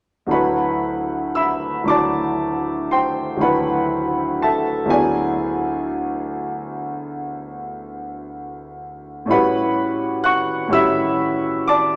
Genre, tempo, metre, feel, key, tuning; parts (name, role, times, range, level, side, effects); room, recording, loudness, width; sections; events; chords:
classical, impressionist solo piano; 38-42 BPM (dotted quarters); 9/8; rubato; A4 = 438 Hz
clear concert grand piano; solo; 0.3-12.0 s; D2 to F#6; -21 LUFS; equal
wet recital hall reverb, RT60 1.4 s; -20 LUFS; mono
0.3-12.0 A section
0.3 D69; 4.9 E9/D; 9.3 A13